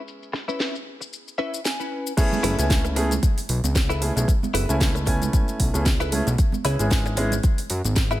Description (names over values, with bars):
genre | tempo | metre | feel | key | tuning
nu-disco, nu disco | 114 BPM | 4/4 | swing 56% on 16ths | F# minor | A4 = 440 Hz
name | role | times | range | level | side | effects
warm grand piano | accompaniment | 0.0-7.3 s | G#3 to G#5 | -27 LUFS | equal | ping-pong delay
house drum kit | drums | 0.1-8.2 s | crash cymbal, hi-hat, shaker, snare drum | -28 LUFS | left 1 dB | studio reverb
direct-recorded clean electric guitar | riff | 0.3-8.2 s | C#4 to G#5 | -28 LUFS | left 2 dB | analog chorus, ping-pong delay
electronic kick drum | drums | 2.2-8.1 s | none | -21 LUFS | equal | studio reverb
egg shaker and congas | percussion | 2.2-8.2 s | none | -32 LUFS | right 5 dB | none
fat analog bass | bass | 2.4-8.2 s | F#1 to F#2 | -24 LUFS | equal | sidechain pumping
room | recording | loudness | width
little or no reverb | low-pass filter | -20 LUFS | side -15 dB against mid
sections
0.0-2.2 A section; 2.2-8.2 B section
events
filter sweep on grand piano 0.0-2.2; clean electric guitar fill 1.1-2.2; drop 2.2-8.2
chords
0.0 C#m7; 2.2 F#m11 (rootless); 6.4 C#m7